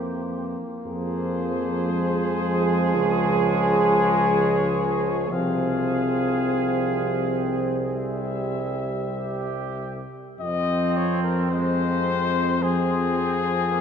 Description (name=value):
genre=classical, hymn-like piece for brass band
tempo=46-61 BPM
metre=4/4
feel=rubato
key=F minor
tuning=A4 = 440 Hz
part: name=warm cornet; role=melody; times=0.0-13.8 s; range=Ab4 to F5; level=-29 LUFS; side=left 6 dB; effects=none
part: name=clear flugelhorn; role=second line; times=0.0-13.8 s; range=Ab3 to Ab4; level=-29 LUFS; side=right 5 dB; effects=none
part: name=clear trombone section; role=accompaniment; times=0.0-13.8 s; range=Ab3 to C4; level=-27 LUFS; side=left 1 dB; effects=none
part: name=warm trombone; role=accompaniment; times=0.0-13.8 s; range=E3 to G3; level=-28 LUFS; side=right 2 dB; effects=none
part: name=warm tuba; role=bass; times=0.0-13.8 s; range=C2 to F2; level=-28 LUFS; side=left 1 dB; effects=none
room=wet church reverb, RT60 3.4 s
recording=minimal, uncompressed stereo recording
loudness=-21 LUFS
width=side -7 dB against mid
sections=0.0-10.4 A section; 10.4-13.8 B section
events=none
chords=0.0 C7/F; 0.9 Fm; 3.0 Db; 5.3 Fm/C; 7.9 C; 10.4 Fm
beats=| 0.86 1.91 2.96 4.08 | 5.31 6.61 7.90 9.18 | 10.40 11.52 12.62 13.69